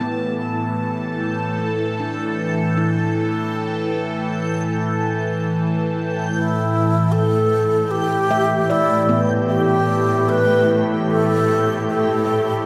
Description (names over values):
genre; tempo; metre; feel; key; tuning
ambient; 76 BPM; 4/4; straight; unclear; A4 = 438 Hz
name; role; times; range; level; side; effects
evolving wavetable pad; sustained chords; 0.0-12.7 s; A2 to A5; -23 LUFS; equal; phaser, built-in reverb, shimmer reverb
handpan; arpeggios; 0.0-12.7 s; A3 to E5; -28 LUFS; equal; shimmer reverb, diffuse ambient delay
backwards swelling texture; texture; 1.2-12.7 s; G5 to G6; -36 LUFS; equal; built-in reverb, analog chorus, shimmer reverb
dark symphonic cello section; bass; 6.3-12.7 s; A2; -27 LUFS; equal; none
analog drone; drone; 7.8-12.7 s; A3 to E4; -30 LUFS; equal; chorus
breathy bright wooden-headed alto flute; melody; 6.4-12.7 s; E4 to B4; -22 LUFS; equal; shimmer reverb, diffuse ambient delay
room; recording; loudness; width
wet plate reverb, RT60 2.6 s; dreamy mix soaked in reverb; -20 LUFS; mono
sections
0.0-6.3 A section; 6.3-12.7 B section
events
filter sweep on ambient pad 6.3-12.7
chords
0.0 A7(no3)